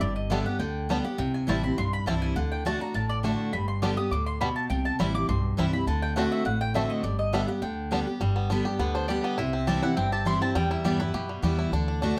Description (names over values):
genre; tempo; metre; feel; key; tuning
bluegrass; 205 BPM; 4/4; straight; G major; A4 = 439 Hz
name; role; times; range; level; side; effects
picked steel-string acoustic guitar; accompaniment; 0.0-12.2 s; E2 to G4; -30 LUFS; equal; none
mandolin; stabs; 0.0-8.1 s; D5 to Eb6; -35 LUFS; equal; none
upright bass; bass; 0.0-12.1 s; G1 to G2; -34 LUFS; equal; none
bluegrass banjo; melody; 0.3-12.2 s; G3 to G4; -34 LUFS; equal; none
mandolin; melody; 8.8-11.7 s; B4 to C6; -35 LUFS; equal; slapback echo
room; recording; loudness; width
moderate small room reverb, RT60 0.6 s; none; -27 LUFS; mono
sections
0.0-8.2 A section; 8.2-12.2 A section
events
mandolin solo 0.0-8.2, 8.2-12.2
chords
0.0 G; 1.2 C; 2.4 D; 3.5 G; 4.7 C; 5.9 D7; 7.0 G; 9.4 C; 10.6 Em